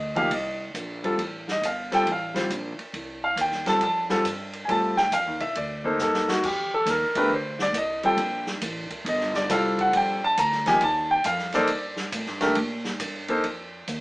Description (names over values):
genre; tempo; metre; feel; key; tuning
modal jazz; 137 BPM; 4/4; swing 66% on 8ths; F mixolydian; A4 = 442 Hz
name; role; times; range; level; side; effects
warm concert grand piano; accompaniment; 0.0-13.4 s; F3 to Bb5; -22 LUFS; equal; none
upright bass; bass; 0.0-14.0 s; G1 to Bb2; -35 LUFS; equal; none
open jazz drum kit; drums; 0.2-14.0 s; crash cymbal, hi-hat, kick drum, ride cymbal, snare drum; -32 LUFS; right 1 dB; none
room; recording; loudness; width
moderate studio reverb, RT60 0.6 s; band playing live in one room, small speaker sound; -22 LUFS; side -22 dB against mid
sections
0.0-13.4 A section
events
drum fill 6.0-6.4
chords
0.0 F13; 13.4 F7(no3)